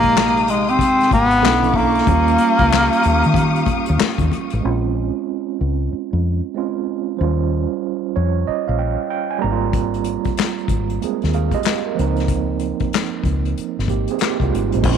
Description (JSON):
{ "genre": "R&B, neo-soul", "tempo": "94 BPM", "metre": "4/4", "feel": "swing 64% on 16ths", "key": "Bb dorian", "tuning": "A4 = 439 Hz", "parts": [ { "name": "clear bass clarinet", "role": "melody", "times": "0.0-4.3 s", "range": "Ab3 to C4", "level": "-16 LUFS", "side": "left 1 dB", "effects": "slapback echo" }, { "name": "overdriven tine electric piano", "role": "accompaniment", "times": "0.0-15.0 s", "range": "C3 to Bb5", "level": "-22 LUFS", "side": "right 13 dB", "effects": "medium tremolo" }, { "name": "warm studio string section", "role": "sustained chords", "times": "0.0-4.6, 14.8-15.0 s", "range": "Ab3 to Eb6", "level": "-26 LUFS", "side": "left 4 dB", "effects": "none" }, { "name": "deep dub fingered electric bass", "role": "bass", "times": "0.0-15.0 s", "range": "Ab1 to Eb3", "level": "-20 LUFS", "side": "left 1 dB", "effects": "none" }, { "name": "unplugged drum kit", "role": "drums", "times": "0.0-4.6, 9.7-15.0 s", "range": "crash cymbal, handclaps, hi-hat, kick drum, snare drum", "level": "-22 LUFS", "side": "left 5 dB", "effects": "none" }, { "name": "congas", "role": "percussion", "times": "0.2-4.5 s", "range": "none", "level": "-28 LUFS", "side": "left 13 dB", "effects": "none" } ], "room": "moderate spring reverb, RT60 2.2 s", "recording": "1960s-style stereo with parts hard left and right", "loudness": "-16 LUFS", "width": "side -8 dB against mid", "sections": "0.0-4.6 A section; 4.6-14.8 B section", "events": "tine electric piano fill 7.8-9.7", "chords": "0.0 Fm9/Bb; 1.4 Bm11; 2.1 Eb9; 4.6 Bbm9; 7.2 Eb13; 9.4 Abmaj13; 12.0 Dbmaj13" }